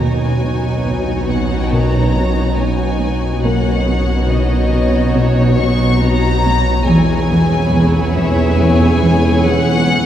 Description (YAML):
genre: cinematic, suspense film score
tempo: 70 BPM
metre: 4/4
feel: straight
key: unclear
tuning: A4 = 438 Hz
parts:
  - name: warm chamber violin section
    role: melody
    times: 0.0-10.1 s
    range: C#5 to C#6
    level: -22 LUFS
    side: left 3 dB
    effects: none
  - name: dark chamber violin section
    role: second line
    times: 0.0-10.1 s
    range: F#4 to C#5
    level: -23 LUFS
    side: left 1 dB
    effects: none
  - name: dark chamber viola section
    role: accompaniment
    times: 0.0-10.1 s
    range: B3 to E4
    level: -20 LUFS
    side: equal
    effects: none
  - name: glass harmonica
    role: sustained chords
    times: 0.0-10.1 s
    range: F#4 to G#5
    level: -27 LUFS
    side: left 1 dB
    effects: none
  - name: mellow French horn section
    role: sustained chords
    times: 0.0-10.1 s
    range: B3 to D#4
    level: -25 LUFS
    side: equal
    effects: none
  - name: warm chamber cello section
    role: riff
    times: 0.0-10.1 s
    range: E2 to B3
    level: -20 LUFS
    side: equal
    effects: none
  - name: dark chamber cello section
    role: bass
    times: 0.0-10.1 s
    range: E2 to B2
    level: -21 LUFS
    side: right 2 dB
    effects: none
  - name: dark chamber double bass section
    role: bass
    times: 0.0-10.1 s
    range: E1 to B1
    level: -21 LUFS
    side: right 2 dB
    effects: none
  - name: deep rumbling drone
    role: drone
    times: 0.0-10.1 s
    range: B1 to E2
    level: -20 LUFS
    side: equal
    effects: built-in reverb
  - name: felt-muted upright piano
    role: texture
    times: 0.0-6.9 s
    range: Bb3 to Bb4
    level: -29 LUFS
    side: left 3 dB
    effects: none
room: wet cathedral reverb, RT60 4.8 s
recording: heard from further back in the room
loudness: -12 LUFS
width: side -10 dB against mid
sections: 0.0-10.1 A section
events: none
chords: 0.0 Badd9; 6.9 E6